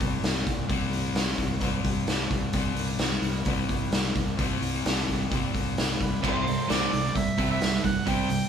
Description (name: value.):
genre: classic rock.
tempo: 130 BPM.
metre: 4/4.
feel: straight.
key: unclear.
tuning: A4 = 440 Hz.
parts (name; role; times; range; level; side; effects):
overdriven semi-hollow guitar; riff; 0.0-8.5 s; C3 to C4; -30 LUFS; left 8 dB; none.
fingered electric bass; bass; 0.0-8.4 s; C2; -32 LUFS; right 1 dB; none.
raw garage drum kit; drums; 0.0-8.4 s; crash cymbal, hi-hat, kick drum, snare drum; -28 LUFS; right 1 dB; none.
mellow harmonica; melody; 6.0-8.5 s; B4 to G5; -31 LUFS; right 1 dB; none.
crunchy overdriven guitar; riff; 6.2-8.5 s; C3 to C4; -29 LUFS; right 13 dB; spring reverb.
room: little or no reverb.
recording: band playing live in one room.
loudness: -24 LUFS.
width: side -8 dB against mid.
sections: 0.0-6.2 A section; 6.2-8.5 B section.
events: none.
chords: 0.0 C5.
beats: 0.23 | 0.69 1.16 1.62 2.08 | 2.54 3.00 3.46 3.92 | 4.39 4.85 5.31 5.77 | 6.23 6.69 7.15 7.61 | 8.07.